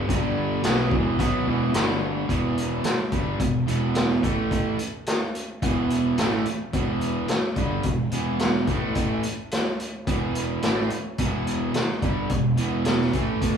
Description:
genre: classic rock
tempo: 108 BPM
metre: 4/4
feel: straight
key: E minor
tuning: A4 = 441 Hz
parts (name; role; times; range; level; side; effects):
- distorted electric guitar; riff; 0.0-13.6 s; E2 to B3; -30 LUFS; left 4 dB; distortion
- distorted electric guitar; riff; 0.0-13.6 s; E2 to B3; -27 LUFS; right 5 dB; distortion
- fuzz fingered electric bass; bass; 0.0-13.6 s; E1 to B1; -29 LUFS; equal; overdrive
- raw garage drum kit; drums; 0.1-13.5 s; hi-hat, kick drum, snare drum; -26 LUFS; equal; none
room: moderate large studio reverb, RT60 1.2 s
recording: band playing live in one room, studio ambience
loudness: -22 LUFS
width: side -7 dB against mid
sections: 0.0-2.3 A section; 2.3-13.6 B section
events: none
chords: 0.1 G5; 0.6 E5; 1.7 G5; 2.3 Em; 4.2 A5; 5.6 Em; 8.7 A5; 10.1 Em

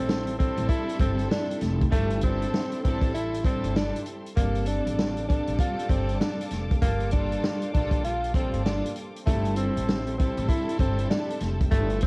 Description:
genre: hip hop, boom-bap hip-hop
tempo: 98 BPM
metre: 4/4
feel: swing 60% on 16ths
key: unclear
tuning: A4 = 442 Hz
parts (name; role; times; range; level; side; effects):
- breathy tenor saxophone; melody; 0.0-12.1 s; A3 to F4; -30 LUFS; equal; high-pass filter, low-pass filter, cassette tape
- warm studio string section; accompaniment; 0.0-12.1 s; G2 to A4; -33 LUFS; equal; cassette tape, high-pass filter, low-pass filter
- warm studio string section; sustained chords; 0.0-12.1 s; Bb3 to D6; -43 LUFS; left 1 dB; high-pass filter, low-pass filter, cassette tape
- upright bass; bass; 0.0-12.1 s; F1 to Bb1; -29 LUFS; equal; tube saturation
- vintage drum kit; drums; 0.1-12.1 s; hi-hat, kick drum, snare drum; -26 LUFS; equal; cassette tape
room: little or no reverb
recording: home recording on cassette, vinyl crackle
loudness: -23 LUFS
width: side -32 dB against mid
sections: 0.0-12.1 A section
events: none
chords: 0.0 Am7; 1.9 C6/G; 4.4 Bbmaj7/G; 6.8 Gm7; 9.3 Am7/G

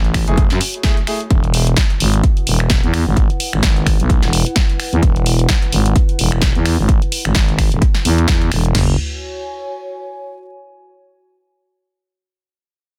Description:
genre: bass house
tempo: 129 BPM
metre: 4/4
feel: swing 57% on 16ths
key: unclear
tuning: A4 = 440 Hz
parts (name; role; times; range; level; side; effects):
- growling FM bass; bass; 0.0-9.0 s; E1 to F#2; -18 LUFS; equal; overdrive, sidechain pumping
- house drum kit; drums; 0.0-8.7 s; finger snaps, hi-hat, snare drum; -23 LUFS; equal; none
- warbly tape-like pad; texture; 0.6-10.6 s; E4 to G#5; -33 LUFS; equal; chorus, built-in reverb, sidechain pumping
- house drum kit; drums; 0.1-8.9 s; crash cymbal, kick drum, snare drum, toms; -18 LUFS; equal; none
- clear grand piano; stabs; 0.3-1.2 s; A3 to G#4; -29 LUFS; equal; sidechain pumping, dub echo
room: digital ambience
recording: dense, heavily limited modern master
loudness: -15 LUFS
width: mono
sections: 0.0-8.7 A section; 8.7-10.6 B section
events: fade-out on ambient pad 0.0-8.7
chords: 0.0 F#m7; 1.3 E; 8.7 F#5

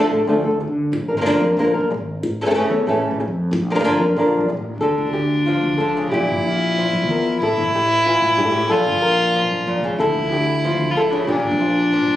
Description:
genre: flamenco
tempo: 185 BPM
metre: 4/4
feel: straight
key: unclear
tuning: A4 = 440 Hz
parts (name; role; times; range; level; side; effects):
- flamenco guitar; melody; 0.0-12.2 s; G2 to Bb4; -19 LUFS; left 1 dB; none
- fretless electric bass; bass; 0.1-12.2 s; G1 to D3; -24 LUFS; equal; none
- warm violin; second line; 4.8-12.2 s; C#4 to F4; -19 LUFS; left 1 dB; none
room: moderate large studio reverb, RT60 1.2 s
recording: recorded on a phone in the room, studio ambience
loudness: -16 LUFS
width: side -13 dB against mid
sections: 0.0-4.8 A section; 4.8-12.2 B section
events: none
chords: 0.0 Dm; 0.9 Bb; 2.2 A; 3.5 Bb; 4.8 Dm; 6.1 Bb5; 7.4 A5; 8.7 Bb5; 10.0 Dm; 11.3 Bb

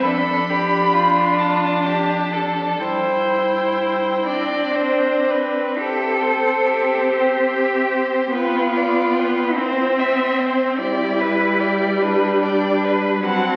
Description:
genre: classical, slow romantic movement for string quartet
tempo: 38-50 BPM (dotted quarters)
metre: 6/8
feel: rubato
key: C major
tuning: A4 = 442 Hz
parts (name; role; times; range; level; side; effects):
- rich violin; melody; 0.0-13.6 s; E5 to C6; -27 LUFS; equal; none
- warm viola; accompaniment; 0.0-13.6 s; F#3 to E4; -24 LUFS; equal; none
- rich cello; bass; 0.0-13.6 s; F2 to A4; -25 LUFS; equal; none
- clear violin; second line; 0.1-13.6 s; F4 to F#5; -25 LUFS; equal; none
room: wet concert hall reverb, RT60 1.7 s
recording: very old 78 rpm record, vinyl crackle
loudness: -19 LUFS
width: mono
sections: 0.0-5.8 A section; 5.8-13.6 A section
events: none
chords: 0.0 Dm/F; 2.8 C/G; 4.3 G; 5.8 C; 8.3 G/B; 9.6 C; 10.8 G

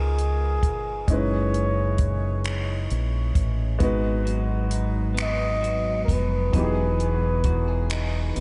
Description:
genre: slow six-eight R&B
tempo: 44 BPM (dotted quarters)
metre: 6/8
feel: straight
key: G# minor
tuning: A4 = 441 Hz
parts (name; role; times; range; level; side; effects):
- breathy flugelhorn; melody; 0.0-8.3 s; G#4 to D#5; -32 LUFS; equal; tape echo
- warm concert grand piano; accompaniment; 0.0-8.4 s; E3 to B4; -32 LUFS; equal; none
- deep dub fingered electric bass; bass; 0.0-8.4 s; E1 to C#2; -27 LUFS; equal; none
- compact cocktail drum kit; drums; 0.2-8.4 s; finger snaps, hi-hat, kick drum; -30 LUFS; equal; none
- electric guitar through a small old amp; second line; 3.8-8.4 s; G#2 to G#4; -34 LUFS; equal; tape echo
room: light reverb, studio reverb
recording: nothing above 11.0 kHz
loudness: -24 LUFS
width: mono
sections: 0.0-8.4 A section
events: none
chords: 0.0 C#13; 1.1 F#13sus4; 3.8 G#m7; 6.5 Emaj7

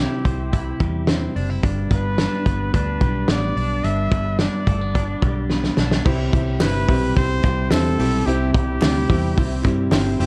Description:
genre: jangly indie pop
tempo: 108 BPM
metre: 4/4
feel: straight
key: unclear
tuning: A4 = 437 Hz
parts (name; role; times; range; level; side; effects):
- clear trumpet; melody; 0.0-9.6 s; G4 to E5; -30 LUFS; equal; analog delay
- twelve-string electric guitar; arpeggios; 0.0-10.3 s; G2 to E4; -27 LUFS; equal; none
- vintage muted fingered electric bass; bass; 0.0-10.3 s; F#1 to G2; -26 LUFS; equal; none
- loose indie drum kit; drums; 0.3-10.3 s; crash cymbal, hi-hat, kick drum, snare drum; -24 LUFS; equal; vintage 12-bit sampler grit
- bright upright piano; accompaniment; 6.1-10.3 s; C4 to G4; -30 LUFS; equal; none
- fingerpicked plugged-in steel-string acoustic guitar; accompaniment; 6.1-10.3 s; C3 to E4; -30 LUFS; equal; none
- group handclap; percussion; 6.6-10.1 s; none; -38 LUFS; equal; none
room: light reverb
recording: dark, warm production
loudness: -20 LUFS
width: mono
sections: 0.0-6.1 A section; 6.1-10.3 B section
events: drum fill 5.5-6.1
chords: 0.0 C; 1.6 G; 6.1 C

